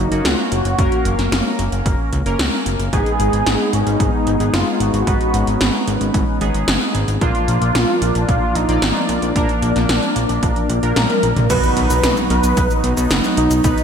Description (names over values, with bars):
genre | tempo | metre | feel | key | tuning
synthwave | 112 BPM | 4/4 | straight | unclear | A4 = 440 Hz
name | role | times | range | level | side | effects
wide unison lead | melody | 0.0-13.8 s | Db4 to B4 | -21 LUFS | equal | ensemble chorus, ping-pong delay
brassy analog pad | sustained chords | 0.0-13.8 s | F3 to F5 | -24 LUFS | left 1 dB | chorus, sidechain pumping
chorused polysynth | stabs | 0.0-13.8 s | Bb3 to D5 | -24 LUFS | right 2 dB | none
fat analog bass | bass | 0.0-13.7 s | Gb1 to Db2 | -20 LUFS | equal | none
80s electronic pad drums | drums | 0.1-13.8 s | cabasa, crash cymbal, hi-hat, snare drum, toms | -22 LUFS | equal | gated reverb on snare and toms, gated reverb
electronic kick drum | drums | 0.8-13.8 s | none | -21 LUFS | equal | none
FM electric piano with soft pad layer | second line | 11.5-13.8 s | D#4 to B4 | -26 LUFS | equal | none
impact | sound effects | 11.5-13.6 s | none | -27 LUFS | equal | none
room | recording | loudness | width
moderate lush hall reverb, RT60 2.4 s | bright 1980s-style digital production | -15 LUFS | side -7 dB against mid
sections
0.0-11.5 A section; 11.5-13.8 B section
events
drum fill 11.0-11.5; impact 11.5-13.6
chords
0.0 Gb; 2.9 Abm; 7.2 Bb; 11.5 B